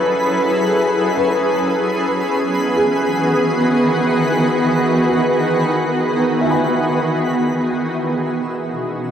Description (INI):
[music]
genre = ambient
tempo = free time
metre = none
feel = none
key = unclear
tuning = A4 = 440 Hz
[part]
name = shimmering ambient pad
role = sustained chords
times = 0.0-9.1 s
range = B2 to A4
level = -16 LUFS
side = equal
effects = chorus, built-in reverb, shimmer reverb
[part]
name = felt-muted upright piano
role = arpeggios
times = 0.0-8.2 s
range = G#4 to B5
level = -23 LUFS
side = left 1 dB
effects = lush chorus, analog delay, shimmer reverb
[part]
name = twinkling granular texture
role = texture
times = 0.0-9.1 s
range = B4 to E6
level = -23 LUFS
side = right 1 dB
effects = built-in reverb, shimmer reverb
[sound]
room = wet lush hall reverb, RT60 3.2 s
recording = dreamy mix soaked in reverb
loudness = -15 LUFS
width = side -8 dB against mid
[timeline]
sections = 0.0-7.7 A section; 7.7-9.1 B section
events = filter sweep on ambient pad 7.7-9.1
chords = 0.0 F#m7; 1.6 Emaj7; 7.7 B7sus4